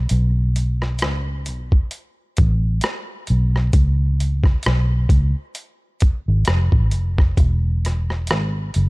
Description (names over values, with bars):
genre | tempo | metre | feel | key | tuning
R&B, neo-soul | 66 BPM | 4/4 | swing 56% on 16ths | unclear | A4 = 440 Hz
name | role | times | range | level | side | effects
vintage muted fingered electric bass | bass | 0.0-8.9 s | E1 to C#2 | -18 LUFS | equal | none
boom bap sampler-style drum kit | drums | 0.1-8.9 s | hi-hat, kick drum, rim click | -19 LUFS | equal | none
room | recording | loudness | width
digital ambience | lossy compression artefacts | -17 LUFS | side -24 dB against mid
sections
0.0-8.9 A section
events
none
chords
none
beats
| 0.10 1.01 1.92 2.83 | 3.74 4.65 5.55 6.46 | 7.37 8.28